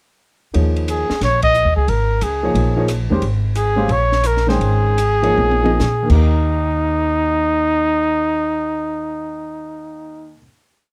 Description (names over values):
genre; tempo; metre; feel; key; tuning
modal jazz; 125-180 BPM; 4/4; swing 64% on 8ths; Eb mixolydian; A4 = 441 Hz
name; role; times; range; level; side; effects
clear grand piano; accompaniment; 0.5-10.4 s; Eb2 to G5; -24 LUFS; equal; none
upright bass; bass; 0.5-10.3 s; Ab1 to Bb2; -21 LUFS; equal; none
compact cocktail drum kit; drums; 0.5-6.2 s; crash cymbal, hi-hat, kick drum, ride cymbal, rim click, snare drum, toms; -30 LUFS; equal; none
mellow trumpet; melody; 0.9-10.3 s; Eb4 to Eb5; -20 LUFS; equal; none
room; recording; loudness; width
light reverb; dark, warm production; -17 LUFS; mono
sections
0.6-6.3 A section; 6.3-10.1 final hit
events
band accent 1.4; slowing down 3.2-6.3; drum fill 5.4-5.8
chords
0.6 Eb9sus4; 6.0 Eb